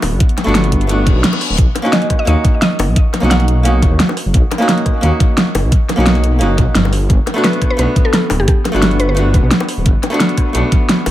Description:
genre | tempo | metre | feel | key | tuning
liquid drum and bass | 174 BPM | 4/4 | straight | unclear | A4 = 440 Hz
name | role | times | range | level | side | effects
archtop guitar, miked and amplified | accompaniment | 0.0-11.1 s | A3 to F#4 | -18 LUFS | equal | dub echo
swelling detuned saw bass | bass | 0.0-11.1 s | D1 to D#2 | -14 LUFS | equal | none
pop drum kit | drums | 0.0-11.1 s | hi-hat, rim click, snare drum | -17 LUFS | equal | overdrive, tape echo
bongos | percussion | 0.0-11.1 s | none | -25 LUFS | left 4 dB | tape echo
electronic kick drum | drums | 0.2-10.8 s | none | -13 LUFS | equal | overdrive
reverse cymbal | sound effects | 1.0-1.6 s | none | -23 LUFS | left 6 dB | none
mallet-like synth pluck | melody | 1.9-3.8, 7.4-9.1 s | G4 to F#5 | -23 LUFS | left 1 dB | chorus, dub echo
room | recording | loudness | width
light reverb | echo-heavy mix | -11 LUFS | side -14 dB against mid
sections
0.0-11.1 A section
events
reverse cymbal 1.0-1.6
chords
0.0 Gmaj9; 1.6 Bmaj9; 6.9 Gmaj9

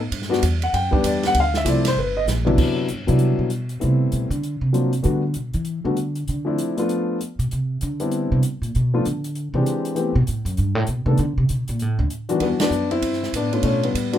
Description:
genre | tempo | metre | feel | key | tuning
jazz piano trio | 195 BPM | 4/4 | swing 62% on 8ths | E minor | A4 = 440 Hz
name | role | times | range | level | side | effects
upright bass | bass | 0.0-14.2 s | G1 to E3 | -22 LUFS | right 1 dB | none
open jazz drum kit | drums | 0.1-14.2 s | crash cymbal, hi-hat, kick drum, ride cymbal, snare drum, toms | -28 LUFS | right 2 dB | none
warm concert grand piano | melody | 0.3-14.2 s | C3 to G5 | -21 LUFS | left 2 dB | none
room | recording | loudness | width
light reverb | minimal, uncompressed stereo recording | -19 LUFS | side -11 dB against mid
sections
0.0-2.6 A section; 2.6-12.4 A section; 12.4-14.2 B section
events
grand piano solo 0.0-2.6; drum fill 2.3-2.6; upright bass solo 2.6-12.4; band accent 12.6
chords
0.1 Em7; 1.4 Dm7; 2.0 G; 2.6 Cmaj9#11; 3.8 Am7; 4.4 D7alt; 5.0 Gmaj7; 6.3 Dm7; 6.9 Bm7b5; 7.5 Cmaj7; 8.7 Bdim; 9.3 E7alt; 10.0 Am7; 11.2 Bm7; 12.4 Em7; 13.6 Bm7b5

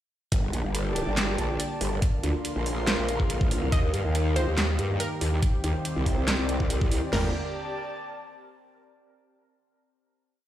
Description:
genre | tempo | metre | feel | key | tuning
heavy wobble dubstep | 141 BPM | 4/4 | half-time | G minor | A4 = 441 Hz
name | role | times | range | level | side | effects
supersaw pad | sustained chords | 0.3-7.3 s | D3 to G4 | -35 LUFS | equal | sidechain pumping, low-pass filter
growl bass | bass | 0.3-7.3 s | G1 to G2 | -26 LUFS | equal | chorus, overdrive
dubstep drum kit | drums | 0.3-7.2 s | crash cymbal, kick drum, snare drum, toms | -25 LUFS | equal | none
dubstep drum kit | drums | 0.3-7.0 s | handclaps, hi-hat, snare drum | -30 LUFS | right 1 dB | none
airy breathy pad | texture | 0.3-8.8 s | C4 to C6 | -35 LUFS | left 1 dB | chorus, sidechain pumping
wide unison pluck | melody | 3.7-7.3 s | Bb4 to Eb5 | -35 LUFS | equal | dub echo
room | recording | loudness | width
little or no reverb | played on a big sound system in a bare room, stone room reverb | -24 LUFS | side -12 dB against mid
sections
0.3-7.1 drop; 7.1-8.8 final chord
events
drop 0.3-7.1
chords
0.3 Gm; 2.0 Bb; 3.7 Eb; 5.4 Cm; 7.1 Gm

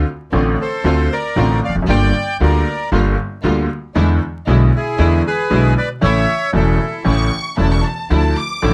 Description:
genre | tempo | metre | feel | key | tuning
tango | 116 BPM | 4/4 | rubato | D minor | A4 = 445 Hz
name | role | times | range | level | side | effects
bright upright piano | accompaniment | 0.0-8.7 s | E1 to F4 | -21 LUFS | equal | none
warm symphonic string section | stabs | 0.0-8.7 s | F3 to F4 | -27 LUFS | equal | none
upright bass | bass | 0.0-8.7 s | E1 to E2 | -19 LUFS | equal | none
bandoneon | melody | 0.6-7.0 s | E4 to G5 | -22 LUFS | equal | none
dark studio violin section | second line | 7.1-8.7 s | A5 to D6 | -26 LUFS | equal | none
room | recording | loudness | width
light reverb | close, detailed microphones, vinyl crackle | -16 LUFS | mono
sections
0.0-8.7 A section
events
none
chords
0.0 Dm7; 1.9 Gm7; 4.0 E7; 6.0 A; 8.1 Dmadd9

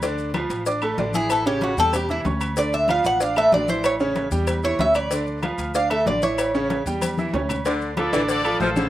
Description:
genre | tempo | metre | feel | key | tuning
latin, salsa | 189 BPM | 4/4 | straight | D minor | A4 = 440 Hz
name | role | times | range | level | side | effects
bright grand piano | accompaniment | 0.0-8.9 s | C#3 to D6 | -25 LUFS | right 1 dB | none
upright bass | bass | 0.0-8.9 s | A1 to E2 | -29 LUFS | equal | none
agogo bells and timbales | percussion | 0.0-8.8 s | none | -32 LUFS | right 3 dB | slapback echo
congas | percussion | 0.0-8.9 s | none | -30 LUFS | left 4 dB | none
cowbell | percussion | 0.0-8.8 s | none | -32 LUFS | left 4 dB | none
maracas | percussion | 0.0-8.9 s | none | -39 LUFS | left 10 dB | none
claves | percussion | 0.3-8.6 s | none | -34 LUFS | left 9 dB | none
Cuban tres | melody | 1.2-6.7 s | E4 to F#5 | -20 LUFS | right 1 dB | none
bright saxophone section | second line | 7.7-8.9 s | D3 to F3 | -26 LUFS | left 3 dB | none
bright trumpet section | melody | 8.0-8.9 s | A4 to D5 | -24 LUFS | left 1 dB | none
room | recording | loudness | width
little or no reverb | recorded outdoors, with no room sound | -19 LUFS | side -14 dB against mid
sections
0.0-7.7 A section; 7.7-8.9 B section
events
Cuban tres solo 0.0-7.7; drum fill 7.0-7.7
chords
0.0 Dm; 1.3 A7; 2.6 Dm; 3.8 A7; 5.1 Dm; 6.4 A7; 7.7 Dm7

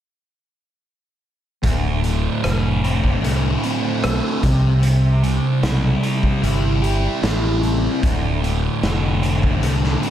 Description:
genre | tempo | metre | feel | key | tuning
psychedelic rock | 75 BPM | 4/4 | straight | D minor | A4 = 442 Hz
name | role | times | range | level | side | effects
thick fuzz guitar | riff | 1.6-10.1 s | D2 to G4 | -19 LUFS | equal | distortion, phaser
fingered electric bass | bass | 1.6-10.0 s | D1 to C2 | -20 LUFS | equal | none
raw garage drum kit | drums | 1.6-10.1 s | hi-hat, kick drum, rim click, snare drum | -24 LUFS | equal | none
room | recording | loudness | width
light reverb, small room ambience | none | -16 LUFS | side -11 dB against mid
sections
1.6-10.1 A section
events
none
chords
1.6 Dm7; 4.4 C; 8.0 Dm7

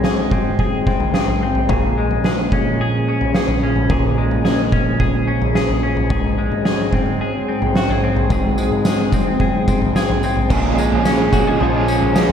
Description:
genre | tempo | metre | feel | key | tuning
dream pop | 109 BPM | 4/4 | straight | Bb minor | A4 = 440 Hz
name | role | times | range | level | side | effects
warbly tape-like pad | sustained chords | 0.0-12.3 s | Ab2 to Ab4 | -22 LUFS | right 1 dB | chorus, built-in reverb
semi-hollow electric guitar | arpeggios | 0.0-12.3 s | Ab2 to Ab4 | -21 LUFS | left 3 dB | wide subtle chorus, ping-pong delay
oversized low-tuned drum kit | drums | 0.0-12.3 s | crash cymbal, kick drum, snare drum, tambourine, toms | -18 LUFS | equal | none
overdriven electric guitar | accompaniment | 10.5-12.3 s | Bb2 to Ab4 | -19 LUFS | right 4 dB | tremolo, analog chorus
room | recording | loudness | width
moderate lush hall reverb, RT60 1.9 s, small room ambience | big arena sound | -15 LUFS | side -8 dB against mid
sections
0.0-10.5 A section; 10.5-12.3 B section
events
none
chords
0.0 Ab7; 1.7 Bbm7; 6.1 Ab7; 10.5 Bbm7

